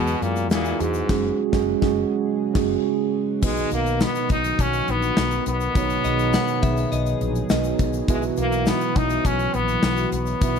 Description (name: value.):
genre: 1980s-style pop.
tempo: 103 BPM.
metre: 4/4.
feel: straight.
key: B major.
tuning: A4 = 440 Hz.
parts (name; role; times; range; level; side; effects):
stopped French horn; melody; 0.0-10.6 s; G#2 to D#4; -25 LUFS; left 3 dB; slapback echo.
mellow tine electric piano; accompaniment; 0.0-10.6 s; B2 to E5; -25 LUFS; moving between right 10 dB and right 16 dB; auto-pan.
chorused pulse-width pad; sustained chords; 0.0-10.6 s; B2 to G#4; -30 LUFS; left 2 dB; none.
analog synth brass; stabs; 0.0-0.7 s; G#3 to G#4; -28 LUFS; left 4 dB; chorus.
woody fretless electric bass; bass; 0.0-10.6 s; F#1 to F#2; -27 LUFS; left 1 dB; none.
gated 80s drum kit; drums; 0.1-10.6 s; crash cymbal, hi-hat, kick drum, snare drum, tambourine; -24 LUFS; left 2 dB; none.
tube shaker; percussion; 0.1-10.6 s; none; -45 LUFS; left 22 dB; none.
glassy synth bell; second line; 6.0-7.9 s; D#5 to F#5; -30 LUFS; left 7 dB; chorus, slapback echo.
room: little or no reverb.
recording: none.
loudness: -19 LUFS.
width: side -6 dB against mid.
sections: 0.0-3.4 A section; 3.4-10.6 B section.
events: band accent 1.1-3.4.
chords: 0.0 Eadd9; 1.1 F#sus2; 3.4 B; 8.1 Esus2.